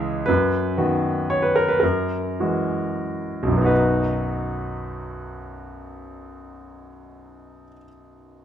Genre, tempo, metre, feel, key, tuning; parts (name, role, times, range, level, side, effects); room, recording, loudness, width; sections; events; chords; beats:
classical, romantic nocturne for solo piano; 28-42 BPM (dotted quarters); 12/8; rubato; B major; A4 = 439 Hz
clear concert grand piano; solo; 0.0-8.4 s; B1 to C#5; -21 LUFS; equal
moderate large studio reverb, RT60 1.5 s; -20 LUFS; side -9 dB against mid
0.0-3.7 A section; 3.7-8.4 B section
slowing down 0.0-3.7
0.3 B/F#; 1.8 F#9; 3.7 B
0.28 1.82 | 3.70 5.44 7.27